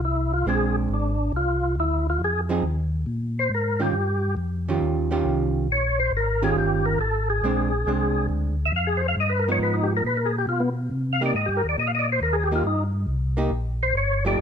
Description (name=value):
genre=jazz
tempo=138 BPM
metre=4/4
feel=swing 68% on 8ths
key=unclear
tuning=A4 = 441 Hz
part: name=percussive tonewheel organ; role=melody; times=0.0-14.4 s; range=B3 to F5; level=-24 LUFS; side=left 1 dB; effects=slow rotary speaker, overdrive, chorus vibrato, plate reverb
part: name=mellow tonewheel organ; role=bass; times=0.0-14.4 s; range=F1 to C3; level=-25 LUFS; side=left 1 dB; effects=chorus vibrato, slow rotary speaker
part: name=vintage hollow-body jazz guitar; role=accompaniment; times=0.5-14.4 s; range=Eb3 to Ab4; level=-25 LUFS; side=right 4 dB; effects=none
room=light reverb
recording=close, detailed microphones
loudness=-21 LUFS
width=side -7 dB against mid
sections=0.0-14.4 A section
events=tonewheel organ solo 0.0-14.4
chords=0.5 Bb9; 2.2 Fm7; 3.1 Bb5; 3.9 Eb9; 7.4 Bb9; 9.2 G7alt; 10.9 Cm7